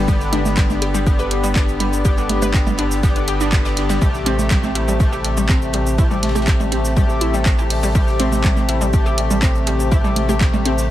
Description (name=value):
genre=melodic techno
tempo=122 BPM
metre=4/4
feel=straight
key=A minor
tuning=A4 = 440 Hz
part: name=dark analog pad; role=sustained chords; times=0.0-10.9 s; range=G4 to B5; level=-26 LUFS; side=left 2 dB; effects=chorus, sidechain pumping
part: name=analog pluck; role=arpeggios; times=0.0-10.7 s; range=G3 to D5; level=-24 LUFS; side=equal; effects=chorus, cassette tape, sidechain pumping, diffuse ambient delay
part: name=sync-sweep polysynth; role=stabs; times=0.0-10.9 s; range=C3 to G4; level=-23 LUFS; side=left 2 dB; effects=chorus, sidechain pumping, diffuse ambient delay
part: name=round analog bass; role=bass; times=0.0-10.9 s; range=G1 to A1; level=-22 LUFS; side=equal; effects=sidechain pumping
part: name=electronic kick drum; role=drums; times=0.1-10.5 s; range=none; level=-17 LUFS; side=equal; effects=overdrive
part: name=punchy analog drum machine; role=drums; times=0.1-10.9 s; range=congas, handclaps, hi-hat, shaker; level=-24 LUFS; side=right 3 dB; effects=none
part: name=warm soul drum kit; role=drums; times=0.1-10.9 s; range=hi-hat, ride cymbal, snare drum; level=-36 LUFS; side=left 3 dB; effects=none
room=light reverb, small room ambience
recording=none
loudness=-15 LUFS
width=side -13 dB against mid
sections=0.0-10.9 A section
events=none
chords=0.0 G; 4.0 Am7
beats=| 0.08 0.57 1.06 1.56 | 2.05 2.54 3.03 3.52 | 4.02 4.51 5.00 5.49 | 5.98 6.47 6.97 7.46 | 7.95 8.44 8.93 9.43 | 9.92 10.41 10.90